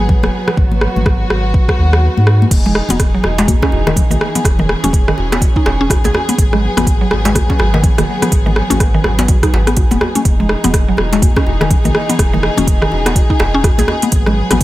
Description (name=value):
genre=afro house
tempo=124 BPM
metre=4/4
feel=swing 60% on 16ths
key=G# minor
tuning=A4 = 440 Hz
part: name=dark studio string section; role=sustained chords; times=0.0-14.6 s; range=E3 to G#4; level=-20 LUFS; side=equal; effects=sidechain pumping
part: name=warm sub bass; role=bass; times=0.0-14.6 s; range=D#1 to G#2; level=-17 LUFS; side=equal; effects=sidechain pumping
part: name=congas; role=percussion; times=0.0-14.6 s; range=none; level=-21 LUFS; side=left 3 dB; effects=none
part: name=electronic kick drum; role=drums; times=0.1-14.6 s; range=none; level=-14 LUFS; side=equal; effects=studio reverb
part: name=afro-pop drum kit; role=drums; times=0.2-14.6 s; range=crash cymbal, hi-hat, rim click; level=-19 LUFS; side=equal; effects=studio reverb
part: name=mallet-like synth pluck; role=arpeggios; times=2.7-14.6 s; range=D#3 to G#4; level=-18 LUFS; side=equal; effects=chorus, sidechain pumping, tape echo
part: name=djembe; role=percussion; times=2.9-14.6 s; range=none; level=-22 LUFS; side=right 1 dB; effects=none
room=small room reverb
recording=none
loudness=-11 LUFS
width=side -16 dB against mid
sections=0.0-14.6 A section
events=kick drops out 2.0-2.5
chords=0.0 G#m7; 2.5 Emaj7; 6.4 G#m7; 10.3 Emaj7; 14.1 G#m7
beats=0.09 | 0.58 1.06 1.54 2.03 | 2.51 3.00 3.48 3.96 | 4.45 4.93 5.42 5.90 | 6.38 6.87 7.35 7.83 | 8.32 8.80 9.29 9.77 | 10.25 10.74 11.22 11.71 | 12.19 12.67 13.16 13.64 | 14.12 14.61